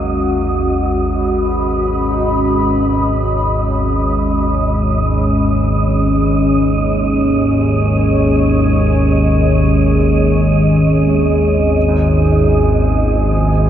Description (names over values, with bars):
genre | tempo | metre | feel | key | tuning
dark ambient drone | free time | none | none | G# minor | A4 = 439 Hz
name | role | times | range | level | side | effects
deep dark ambient pad | sustained chords | 0.0-13.7 s | F3 to B5 | -16 LUFS | equal | chorus, built-in reverb
bright concert grand piano | arpeggios | 0.0-13.7 s | G#2 to D#4 | -35 LUFS | right 2 dB | none
analog drone | drone | 0.0-13.7 s | G#1 to D#2 | -15 LUFS | equal | chorus
wind-like tuned noise texture | texture | 0.0-13.7 s | D#5 | -22 LUFS | right 4 dB | built-in reverb, wide subtle chorus
room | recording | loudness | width
moderate huge ambient reverb, RT60 9.0 s | dreamy mix soaked in reverb | -12 LUFS | side -10 dB against mid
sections
0.0-13.7 A section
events
none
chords
0.0 G#m; 11.8 Fm